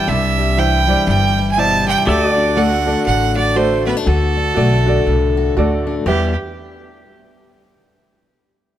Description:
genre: honky-tonk and classic country.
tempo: 120 BPM.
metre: 4/4.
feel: swing 60% on 8ths.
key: E minor.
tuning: A4 = 438 Hz.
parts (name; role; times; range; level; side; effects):
clear fiddle; second line; 0.0-6.3 s; G4 to A5; -18 LUFS; right 4 dB; none.
picked steel-string acoustic guitar; accompaniment; 0.0-6.3 s; E2 to G4; -19 LUFS; left 4 dB; none.
pedal steel guitar; sustained chords; 0.0-6.0 s; F#4 to D5; -25 LUFS; left 1 dB; none.
upright bass; bass; 0.1-6.3 s; G1 to E2; -19 LUFS; equal; none.
clear concert grand piano; accompaniment; 0.6-6.4 s; E4 to E5; -23 LUFS; right 3 dB; none.
room: light reverb.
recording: none.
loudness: -13 LUFS.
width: side -11 dB against mid.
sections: 0.0-6.1 A section; 6.1-8.1 B section.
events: fiddle solo 0.0-6.1.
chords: 0.0 Cadd9; 2.1 D; 6.1 Em.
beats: | 0.07 0.57 1.07 1.57 | 2.07 2.57 3.07 3.57 | 4.07 4.56 5.06 5.56 | 6.06.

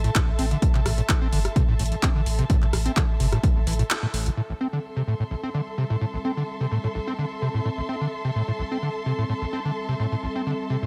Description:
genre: acid house.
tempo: 128 BPM.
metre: 4/4.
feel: straight.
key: A minor pentatonic.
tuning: A4 = 440 Hz.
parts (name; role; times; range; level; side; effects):
overdriven acid bass; riff; 0.0-10.9 s; A1 to C4; -28 LUFS; equal; distortion, analog chorus, sidechain pumping.
warm sub bass; bass; 0.0-4.3 s; G1 to A1; -28 LUFS; equal; sidechain pumping.
electro analog drum machine; drums; 0.0-4.4 s; handclaps, hi-hat, rim click; -31 LUFS; equal; none.
warm studio string section; texture; 0.0-10.9 s; A4 to C6; -36 LUFS; equal; sidechain pumping.
electronic kick drum; drums; 0.2-3.5 s; none; -24 LUFS; equal; none.
warbly tape-like pad; sustained chords; 4.9-10.9 s; G3 to A4; -38 LUFS; equal; chorus, built-in reverb, sidechain pumping.
room: light reverb.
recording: none.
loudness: -25 LUFS.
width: mono.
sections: 0.0-4.4 A section; 4.4-10.9 B section.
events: break 3.9-4.4; band accent 3.9.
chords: 0.0 Am; 4.4 Am7.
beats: 0.15 | 0.62 1.09 1.56 2.03 | 2.50 2.97 3.44 3.90 | 4.37 4.84 5.31 5.78 | 6.25 6.72 7.18 7.65 | 8.12 8.59 9.06 9.53 | 10.00 10.47.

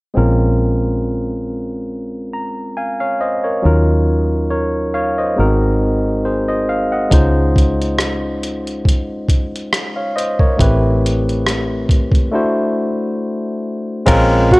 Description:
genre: R&B, neo-soul.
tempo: 69 BPM.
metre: 4/4.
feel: swing 54% on 16ths.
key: Bb minor.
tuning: A4 = 439 Hz.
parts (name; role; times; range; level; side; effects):
barky tine electric piano; accompaniment; 0.1-14.6 s; Gb3 to Bb5; -17 LUFS; equal; overdrive.
deep dub fingered electric bass; bass; 0.2-14.6 s; Ab1 to Eb2; -17 LUFS; equal; none.
boom bap sampler-style drum kit; drums; 7.1-14.6 s; crash cymbal, hi-hat, kick drum, rim click; -16 LUFS; equal; none.
warm alto saxophone; melody; 14.5-14.6 s; Gb4; -7 LUFS; right 1 dB; none.
room: light reverb.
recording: worn, warbling old tape, cassette tape, warbly pitch drift.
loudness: -14 LUFS.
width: side -23 dB against mid.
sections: 0.2-14.1 A section.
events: break 12.3-14.1.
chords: 0.2 Bbm7; 3.6 Ebm7; 5.4 Ab7; 7.1 Dbmaj7; 10.6 Am7; 12.3 D7; 14.1 Bbm7.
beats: | 0.16 1.03 1.90 2.77 | 3.63 4.50 5.37 6.24 | 7.11 7.98 8.85 9.72 | 10.59 11.46 12.33 13.20 | 14.07.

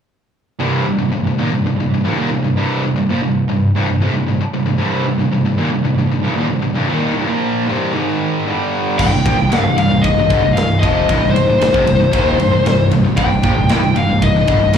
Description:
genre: heavy metal.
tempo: 114 BPM.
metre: 4/4.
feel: straight.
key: C minor.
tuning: A4 = 440 Hz.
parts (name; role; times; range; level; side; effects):
distorted electric guitar; riff; 0.6-14.8 s; C2 to Bb3; -18 LUFS; right 6 dB; distortion.
heavy high-gain guitar; riff; 0.6-14.8 s; C2 to Bb3; -19 LUFS; left 7 dB; distortion, slapback echo.
high-gain lead guitar; melody; 9.0-14.8 s; C5 to G5; -16 LUFS; left 4 dB; distortion, slapback echo.
biting overdriven guitar; riff; 9.0-14.8 s; C2 to F3; -24 LUFS; left 1 dB; slapback echo.
fuzz picked electric bass; bass; 9.0-14.8 s; C1 to Bb1; -19 LUFS; equal; overdrive.
tight metal drum kit; drums; 9.0-14.8 s; crash cymbal, kick drum, ride cymbal, snare drum; -20 LUFS; equal; none.
room: light reverb, studio reverb.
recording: live gig heard through the venue's PA, club ambience.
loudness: -13 LUFS.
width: side -8 dB against mid.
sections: 0.6-9.0 A section; 9.0-14.8 B section.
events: none.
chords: 0.6 Cm; 7.9 Ab5; 8.5 G5; 9.0 Cm.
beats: | 0.59 1.12 1.64 2.17 | 2.70 3.22 3.75 4.28 | 4.80 5.33 5.85 6.37 | 6.90 7.42 7.95 8.47 | 8.99 9.51 10.04 10.56 | 11.08 11.61 12.13 12.65 | 13.18 13.70 14.22 14.75.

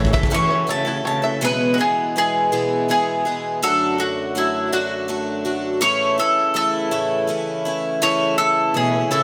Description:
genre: folk.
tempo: 55 BPM (dotted quarters).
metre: 6/8.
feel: straight.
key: E mixolydian.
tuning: A4 = 440 Hz.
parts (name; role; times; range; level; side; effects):
bowl-back mandolin; melody; 0.0-9.2 s; E4 to C#6; -22 LUFS; equal; none.
warm cello; second line; 0.0-1.4, 8.7-9.2 s; B2 to E3; -28 LUFS; equal; none.
clear grand piano; accompaniment; 0.0-1.4 s; A1 to E5; -35 LUFS; equal; none.
picked twelve-string acoustic guitar; accompaniment; 0.0-9.2 s; E2 to A4; -26 LUFS; equal; none.
pedal harmonium; sustained chords; 0.0-9.2 s; F#2 to F#4; -30 LUFS; equal; none.
bluegrass banjo; arpeggios; 0.0-1.4 s; E4 to E5; -29 LUFS; equal; delay.
room: moderate plate reverb, RT60 2.3 s.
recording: bright 1980s-style digital production.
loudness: -20 LUFS.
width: mono.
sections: 0.0-1.4 A section; 1.4-9.2 B section.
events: build-up 0.0-1.4.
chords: 0.0 A; 1.4 E; 3.6 D/F#; 5.8 A.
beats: 0.33 | 1.43 2.52 | 3.62 4.72 | 5.82 6.92 | 8.02 9.12.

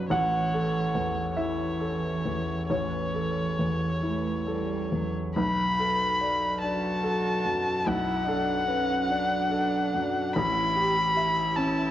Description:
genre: neoclassical piano and strings.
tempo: 44-50 BPM (dotted quarters).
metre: 6/8.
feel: rubato.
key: B minor.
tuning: A4 = 439 Hz.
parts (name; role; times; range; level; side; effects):
muted violin; melody; 0.0-11.9 s; B4 to B5; -28 LUFS; left 1 dB; none.
muted cello; second line; 0.0-11.9 s; E3 to G4; -33 LUFS; right 6 dB; none.
warm grand piano; accompaniment; 0.0-11.9 s; A1 to F#5; -28 LUFS; left 1 dB; none.
room: moderate scoring stage reverb, RT60 2.0 s.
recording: worn, warbling old tape, cassette tape, warbly pitch drift.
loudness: -24 LUFS.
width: side -12 dB against mid.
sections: 0.0-5.4 A section; 5.4-11.9 B section.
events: none.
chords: 0.1 A; 5.4 Bm7; 10.4 A7.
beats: | 0.11 1.38 | 2.70 4.03 | 5.36 6.62 | 7.86 9.10 | 10.37 11.59.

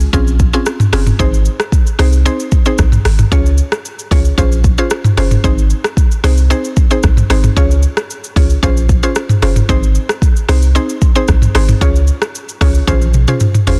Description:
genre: afrobeats.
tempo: 113 BPM.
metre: 4/4.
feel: straight.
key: unclear.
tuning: A4 = 441 Hz.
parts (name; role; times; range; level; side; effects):
mallet-like synth pluck; accompaniment; 0.0-13.8 s; C4 to Db5; -21 LUFS; equal; chorus.
punchy sub bass; bass; 0.0-13.8 s; Gb1 to Db2; -14 LUFS; equal; none.
afro-pop drum kit; drums; 0.0-13.8 s; hi-hat, kick drum, rim click, shaker, toms; -15 LUFS; equal; vintage 12-bit sampler grit, soft clipping on snare.
room: little or no reverb.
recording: dense, heavily limited modern master.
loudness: -12 LUFS.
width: mono.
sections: 0.0-13.8 A section.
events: drum fill 12.9-13.8.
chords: 0.1 Bbm7; 1.2 Ab; 3.3 Db; 4.4 Bbm7; 5.4 Ab; 7.6 Db; 8.6 Bbm7; 9.7 Ab; 11.8 Db; 12.9 Bbm7.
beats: 0.13 0.66 | 1.20 1.73 2.26 2.79 | 3.32 3.85 4.38 4.91 | 5.44 5.97 6.50 7.04 | 7.57 8.10 8.63 9.16 | 9.69 10.22 10.75 11.28 | 11.81 12.35 12.88 13.41.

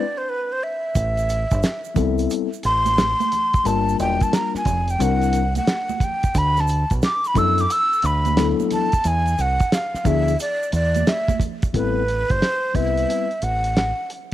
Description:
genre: hip hop, jazz-hop.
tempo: 89 BPM.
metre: 4/4.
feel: swing 66% on 16ths.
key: A dorian.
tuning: A4 = 439 Hz.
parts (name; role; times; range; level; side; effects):
breathy mellow silver concert flute; melody; 0.0-14.1 s; B4 to E6; -22 LUFS; equal; cassette tape.
mellow tine electric piano; accompaniment; 0.0-13.3 s; F3 to B4; -24 LUFS; left 10 dB; fast stereo tremolo, cassette tape.
deep dub fingered electric bass; bass; 1.0-13.9 s; E1 to F#2; -22 LUFS; right 1 dB; none.
cloth-damped thuddy drum kit; drums; 1.0-14.3 s; hi-hat, kick drum, snare drum; -22 LUFS; right 1 dB; cassette tape.
egg shaker and congas; percussion; 1.0-11.7 s; none; -32 LUFS; right 13 dB; none.
room: small room reverb.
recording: home recording on cassette.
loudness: -18 LUFS.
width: side -13 dB against mid.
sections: 0.0-11.7 A section; 11.7-14.3 B section.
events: break 0.0-1.0; flute solo 0.0-11.7.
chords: 0.0 E7(no3); 1.0 Am9; 3.7 Gm7; 5.0 C9; 6.3 D69; 9.0 E7b9; 11.7 Am9.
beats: 0.28 | 0.95 1.63 2.30 2.98 | 3.65 4.33 5.00 5.67 | 6.35 7.02 7.70 8.37 | 9.04 9.72 10.39 11.07 | 11.74 12.42 13.09 13.76.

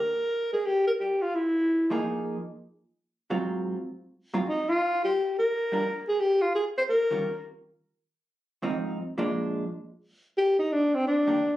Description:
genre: jazz.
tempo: 173 BPM.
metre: 4/4.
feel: swing 63% on 8ths.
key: Eb major.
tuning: A4 = 439 Hz.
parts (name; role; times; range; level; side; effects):
breathy alto saxophone; melody; 0.0-1.9, 4.5-7.4, 10.4-11.6 s; C4 to C5; -24 LUFS; equal; none.
vintage hollow-body jazz guitar; accompaniment; 1.9-11.4 s; Ab2 to Bb4; -29 LUFS; right 1 dB; none.
room: light reverb.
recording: recorded on a phone in the room, club reverb, compression.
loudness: -25 LUFS.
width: side -14 dB against mid.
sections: 0.0-10.4 A section; 10.4-11.6 B section.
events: none.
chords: 0.0 N.C.; 0.6 Fm11; 2.0 Fm7; 3.4 Ab6; 4.8 Gm7; 6.2 N.C.; 6.9 Eb9; 7.6 Ab6; 9.0 Bb7; 10.4 Ebmaj7.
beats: 0.29 | 0.64 0.99 1.33 1.68 | 2.03 2.38 2.73 3.07 | 3.42 3.77 4.11 4.46 | 4.81 5.16 5.50 5.85 | 6.20 6.54 6.89 7.24 | 7.58 7.93 8.28 8.62 | 8.97 9.31 9.66 10.01 | 10.35 10.70 11.05 11.39.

